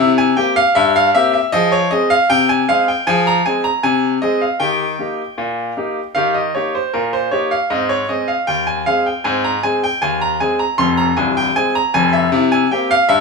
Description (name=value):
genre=ragtime piano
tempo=78 BPM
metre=2/4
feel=straight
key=Ab major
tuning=A4 = 439 Hz
part: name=bright grand piano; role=solo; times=0.0-13.2 s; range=C1 to C6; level=-14 LUFS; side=left 1 dB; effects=none
room=moderate stone room reverb, RT60 1.1 s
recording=band playing live in one room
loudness=-14 LUFS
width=side -4 dB against mid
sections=0.0-13.2 A section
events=none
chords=0.0 C7; 1.5 Fm; 4.6 Eb; 7.7 Ab; 10.8 Fm; 12.3 C7